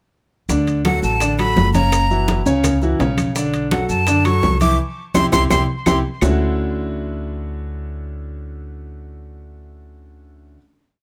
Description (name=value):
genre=latin, salsa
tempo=168 BPM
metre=4/4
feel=straight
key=D major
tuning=A4 = 439 Hz
part: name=clear concert grand piano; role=accompaniment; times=0.5-10.6 s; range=C#3 to E5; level=-23 LUFS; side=equal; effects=none
part: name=upright bass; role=bass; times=0.5-10.6 s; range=F#1 to F#2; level=-24 LUFS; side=equal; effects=none
part: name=bongos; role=percussion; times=0.5-6.3 s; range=none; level=-28 LUFS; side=equal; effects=none
part: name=congas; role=percussion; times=0.5-6.3 s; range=none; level=-25 LUFS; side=equal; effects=none
part: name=maracas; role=percussion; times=0.5-6.3 s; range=none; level=-34 LUFS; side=equal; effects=none
part: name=timbales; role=percussion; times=0.7-6.3 s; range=none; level=-30 LUFS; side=equal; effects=none
part: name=claves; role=percussion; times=0.8-6.3 s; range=none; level=-33 LUFS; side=equal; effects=none
part: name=breathy bright jazz flute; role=melody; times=0.9-6.0 s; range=F#5 to D6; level=-23 LUFS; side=equal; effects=tape echo
room=moderate studio reverb, RT60 0.5 s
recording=none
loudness=-18 LUFS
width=mono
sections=0.5-6.2 verse; 6.2-9.1 final chord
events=band accent 4.8-6.2; drum fill 5.1-6.2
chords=0.5 Dmaj7; 1.9 F#7; 3.4 Bm9; 4.8 C; 6.2 Dmaj9